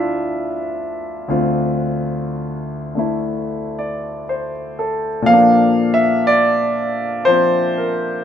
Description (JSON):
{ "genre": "solo jazz", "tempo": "60 BPM", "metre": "4/4", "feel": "swing 66% on 8ths", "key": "D minor", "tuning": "A4 = 440 Hz", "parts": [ { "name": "warm concert grand piano", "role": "solo", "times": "0.0-8.2 s", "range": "D2 to F5", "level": "-16 LUFS", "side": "left 1 dB", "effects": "none" } ], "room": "moderate club reverb, RT60 0.6 s", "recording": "none", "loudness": "-16 LUFS", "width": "side -9 dB against mid", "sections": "0.0-8.2 A section", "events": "none", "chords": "0.0 Dm7; 5.3 Bb" }